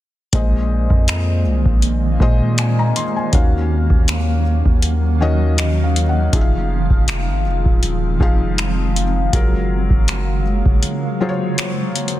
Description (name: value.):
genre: contemporary R&B.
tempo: 80 BPM.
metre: 4/4.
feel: swing 54% on 16ths.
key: unclear.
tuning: A4 = 442 Hz.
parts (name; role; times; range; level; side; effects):
felt-muted upright piano; accompaniment; 0.3-12.2 s; Bb2 to C6; -23 LUFS; left 3 dB; none.
granular cloud pad; sustained chords; 1.4-12.2 s; Db3 to F5; -24 LUFS; right 2 dB; built-in reverb.
long sustained 808-style bass; bass; 0.3-10.8 s; Eb1 to Bb2; -18 LUFS; equal; none.
booming analog drum machine; drums; 0.3-12.2 s; finger snaps, hi-hat, kick drum; -16 LUFS; equal; soft clipping on snare.
room: little or no reverb.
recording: dense, heavily limited modern master.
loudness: -14 LUFS.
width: side -14 dB against mid.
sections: 0.3-12.2 A section.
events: felt piano fill 5.2-6.3; break 10.8-12.2.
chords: 0.3 Bb9sus4; 3.3 Ebm9; 6.3 Fm7; 9.3 Gbmaj9.